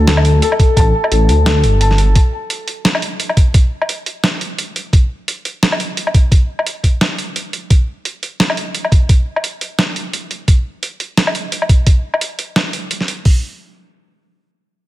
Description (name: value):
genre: half-time drum and bass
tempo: 173 BPM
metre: 4/4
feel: swing 56% on 16ths, half-time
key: unclear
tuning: A4 = 441 Hz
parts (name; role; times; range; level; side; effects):
- felt-muted upright piano; arpeggios; 0.0-2.2 s; A4 to A5; -18 LUFS; left 4 dB; ping-pong delay
- dark detuned saw bass; bass; 0.0-2.1 s; G1 to D2; -12 LUFS; equal; none
- boom bap sampler-style drum kit; drums; 0.1-13.2 s; hi-hat, snare drum, woodblock; -17 LUFS; equal; none
- boom bap sampler-style drum kit; drums; 0.6-13.3 s; hi-hat, kick drum; -10 LUFS; equal; none
room: light reverb, digital ambience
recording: none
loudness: -13 LUFS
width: side -16 dB against mid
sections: 0.0-13.3 A section; 13.3-14.6 B section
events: none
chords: none